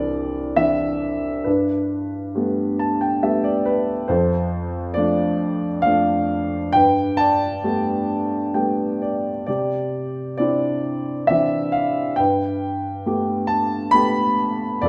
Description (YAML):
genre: classical, lyrical solo piano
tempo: 67 BPM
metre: 3/4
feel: rubato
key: unclear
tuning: A4 = 440 Hz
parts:
  - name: dark grand piano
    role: solo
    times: 0.0-14.9 s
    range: C2 to B5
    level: -21 LUFS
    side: equal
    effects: none
room: moderate recital hall reverb, RT60 1.4 s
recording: recorded in a church or concert hall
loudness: -21 LUFS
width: mono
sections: 0.0-14.9 A section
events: grand piano fill 2.4-4.1, 8.1-9.5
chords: 0.0 Cadd9; 1.5 Gadd9; 4.1 F6; 6.8 Gadd9; 9.5 Cadd9; 12.2 Gadd9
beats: 0.57 | 1.46 2.36 3.23 | 4.10 4.97 5.86 | 6.75 7.64 8.55 | 9.48 10.40 11.30 | 12.19 13.07 13.94 | 14.83